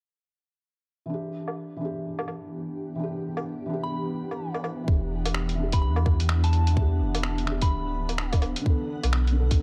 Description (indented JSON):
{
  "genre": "future garage",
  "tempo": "127 BPM",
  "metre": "4/4",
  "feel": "swing 61% on 16ths",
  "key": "E minor",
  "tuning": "A4 = 440 Hz",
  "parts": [
    { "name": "felt-muted upright piano", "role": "accompaniment", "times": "1.1-9.6 s", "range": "D3 to A4", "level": "-36 LUFS", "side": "equal", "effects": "sidechain pumping, low-pass filter, tape echo" },
    { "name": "granular cloud pad", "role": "sustained chords", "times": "2.0-9.6 s", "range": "B2 to F#5", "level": "-37 LUFS", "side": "equal", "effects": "built-in reverb, sidechain pumping" },
    { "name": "lo-fi sampler-style drum kit", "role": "drums", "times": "1.5-9.6 s", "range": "finger snaps, hi-hat, woodblock", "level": "-34 LUFS", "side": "equal", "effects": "overdrive, low-pass filter on perc, small room ambience, low-pass filter on hats, low-pass filter on snare" },
    { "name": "soft synth bell", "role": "melody", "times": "3.8-8.3 s", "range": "A5 to B5", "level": "-39 LUFS", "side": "equal", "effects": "chorus, phaser, delay" },
    { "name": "warm sub bass", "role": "bass", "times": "4.9-9.6 s", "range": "D1 to E2", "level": "-27 LUFS", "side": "equal", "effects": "sidechain pumping" },
    { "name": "electronic kick drum", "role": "drums", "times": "4.9-9.6 s", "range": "none", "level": "-25 LUFS", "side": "equal", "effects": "small room ambience" }
  ],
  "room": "light reverb",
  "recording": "dark, warm production",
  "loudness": "-27 LUFS",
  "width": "mono",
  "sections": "1.1-4.9 A section; 4.9-9.6 B section",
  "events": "filter sweep on drum 1.1-4.9; filter sweep on ambient pad 1.1-4.9; filter sweep on felt piano 4.9-9.6",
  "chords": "1.1 Em7; 8.7 Bm7",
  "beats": "| 1.10 1.57 2.04 2.52 | 2.99 3.46 3.93 4.41 | 4.88 5.35 5.82 6.30 | 6.77 7.24 7.71 8.19 | 8.66 9.13 9.60"
}